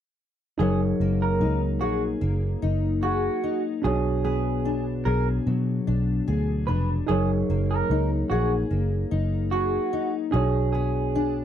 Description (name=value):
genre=indie pop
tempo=74 BPM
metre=4/4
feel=swing 55% on 16ths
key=F# major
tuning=A4 = 440 Hz
part: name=electric guitar through a small old amp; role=second line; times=0.6-11.3 s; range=F#4 to B4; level=-28 LUFS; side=right 4 dB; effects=wide subtle chorus, slapback echo
part: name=fingerpicked steel-string acoustic guitar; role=accompaniment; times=0.6-11.4 s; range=B2 to G#4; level=-28 LUFS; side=left 7 dB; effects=analog chorus, warbly pitch drift
part: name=tine electric piano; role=accompaniment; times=0.6-11.4 s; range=D4 to C#5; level=-31 LUFS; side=right 7 dB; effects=none
part: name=vintage muted fingered electric bass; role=bass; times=0.6-11.4 s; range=E#1 to B2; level=-25 LUFS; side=equal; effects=none
room=light reverb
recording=dry, close 1970s-style studio recording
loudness=-22 LUFS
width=side -10 dB against mid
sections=0.6-11.4 A section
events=none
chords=0.6 F#69; 3.8 Bm6; 7.1 F#69; 10.3 Bm6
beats=| 0.59 1.41 2.22 3.03 | 3.84 4.66 5.47 6.28 | 7.09 7.91 8.72 9.53 | 10.34 11.15